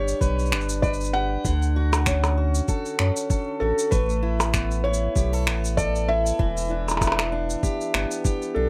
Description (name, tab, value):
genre	folktronica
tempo	97 BPM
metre	4/4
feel	swing 56% on 16ths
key	D major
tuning	A4 = 445 Hz
part	felt-muted upright piano	melody	0.0-8.7 s	A4 to F#5	-30 LUFS	equal	tape echo, plate reverb
part	picked steel-string acoustic guitar	arpeggios	0.0-8.7 s	D3 to B4	-31 LUFS	equal	tape echo, plate reverb
part	warm sub bass	bass	0.0-8.7 s	E1 to F#2	-27 LUFS	equal	none
part	electronic shaker, finger snaps and percussion blips	drums	0.1-8.5 s	none	-29 LUFS	equal	overdrive
part	electronic kick drum	drums	0.2-8.4 s	none	-27 LUFS	equal	none
room	light reverb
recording	none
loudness	-23 LUFS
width	mono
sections	0.0-8.7 A section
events	none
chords	0.0 G; 1.4 Dmaj7; 3.9 Asus2; 6.4 Em7